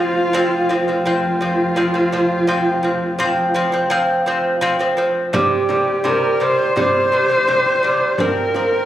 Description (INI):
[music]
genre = mongolian traditional, Mongolian folk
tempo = 84 BPM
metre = 4/4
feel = straight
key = unclear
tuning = A4 = 440 Hz
[part]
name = warm horsehead fiddle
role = melody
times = 0.0-8.9 s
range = F4 to C5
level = -18 LUFS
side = equal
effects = none
[part]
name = lute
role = arpeggios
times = 0.0-8.8 s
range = C3 to C4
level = -18 LUFS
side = equal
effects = none
[part]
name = rich double bass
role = drone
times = 0.0-5.4 s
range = F1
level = -27 LUFS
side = left 1 dB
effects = none
[part]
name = frame drum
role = percussion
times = 5.3-8.7 s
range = none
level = -25 LUFS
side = equal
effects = none
[sound]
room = moderate recital hall reverb, RT60 1.6 s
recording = recorded on a phone in the room, club reverb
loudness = -15 LUFS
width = side -12 dB against mid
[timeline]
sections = 0.0-5.3 A section; 5.3-8.9 B section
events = none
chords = 0.0 F5; 5.3 C5; 8.2 F5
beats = 0.34 1.05 1.76 | 2.48 3.19 3.91 4.62 | 5.34 6.05 6.77 7.48 | 8.20